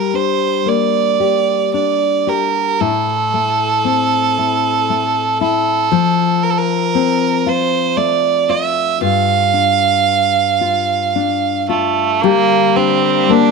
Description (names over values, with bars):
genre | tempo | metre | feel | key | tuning
celtic folk, Celtic slow air | 57 BPM | 3/4 | rubato | G dorian | A4 = 439 Hz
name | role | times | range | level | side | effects
rich fiddle | melody | 0.0-13.5 s | A3 to F5 | -15 LUFS | right 8 dB | none
nylon-string guitar | accompaniment | 0.0-13.5 s | G2 to G4 | -17 LUFS | left 12 dB | none
rich chamber string section | sustained chords | 12.2-13.5 s | D3 to G4 | -23 LUFS | left 4 dB | none
room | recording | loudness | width
light reverb, small room ambience | 1960s-style stereo with parts hard left and right | -13 LUFS | side -4 dB against mid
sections
0.0-12.2 A section; 12.2-13.5 A section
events
none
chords
0.0 Gm; 2.8 Am; 5.9 F; 9.0 G5; 12.2 Gm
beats
0.67 1.74 | 2.81 3.86 4.90 | 5.93 6.94 7.97 | 9.00 10.06 11.14 | 12.22 13.28